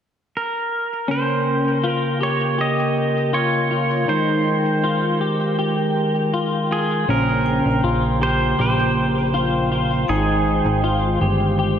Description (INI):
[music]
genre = dream pop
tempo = 80 BPM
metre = 4/4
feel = straight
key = Bb dorian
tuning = A4 = 440 Hz
[part]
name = pedal steel guitar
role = melody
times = 0.4-10.8 s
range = Ab4 to Eb5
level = -24 LUFS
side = right 2 dB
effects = tape echo
[part]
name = mellow tonewheel organ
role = sustained chords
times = 1.1-11.8 s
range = Db3 to G5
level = -21 LUFS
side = right 1 dB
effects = slow rotary speaker
[part]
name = clean electric guitar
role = arpeggios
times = 1.1-11.8 s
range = Db4 to G4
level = -23 LUFS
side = left 4 dB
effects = analog chorus, tape echo
[part]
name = fat analog bass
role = bass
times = 7.1-11.8 s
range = G1 to Bb1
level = -22 LUFS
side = equal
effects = none
[part]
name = vibraphone with medium hard mallets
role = texture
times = 7.5-11.8 s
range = G5 to Bb5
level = -32 LUFS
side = right 3 dB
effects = tape echo
[sound]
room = wet plate reverb, RT60 2.5 s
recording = dreamy mix soaked in reverb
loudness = -17 LUFS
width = side -8 dB against mid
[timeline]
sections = 0.0-1.1 A section; 1.1-7.1 B section; 7.1-11.8 C section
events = none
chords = 0.0 N.C.; 1.1 Bbm69; 4.1 Abmaj7; 7.1 Bbm69; 10.1 Abmaj7